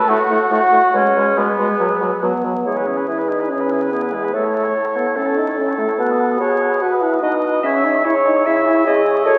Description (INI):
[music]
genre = quick classical-period movement for wind quintet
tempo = 145 BPM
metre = 4/4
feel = rubato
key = E major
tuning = A4 = 437 Hz
[part]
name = mellow hollow concert flute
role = melody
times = 0.0-9.3 s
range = B4 to C#6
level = -26 LUFS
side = equal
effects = none
[part]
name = mellow oboe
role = second line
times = 0.0-9.4 s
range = B3 to F#5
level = -24 LUFS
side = equal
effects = none
[part]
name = mellow French horn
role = accompaniment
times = 0.0-9.3 s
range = G#3 to B4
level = -22 LUFS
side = equal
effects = none
[part]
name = clear clarinet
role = accompaniment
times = 0.1-9.4 s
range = F#3 to E5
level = -23 LUFS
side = equal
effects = none
[part]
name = mellow bassoon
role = bass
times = 0.1-9.4 s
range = E2 to C#3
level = -25 LUFS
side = equal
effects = none
[sound]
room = wet scoring stage reverb, RT60 1.7 s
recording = very old 78 rpm record, vinyl crackle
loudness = -17 LUFS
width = mono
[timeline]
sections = 0.0-2.7 A section; 2.7-9.4 B section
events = none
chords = 0.1 F#m/A; 0.9 G#madd11/B; 1.8 B5; 2.7 E; 4.3 A; 6.0 B7; 7.6 C#m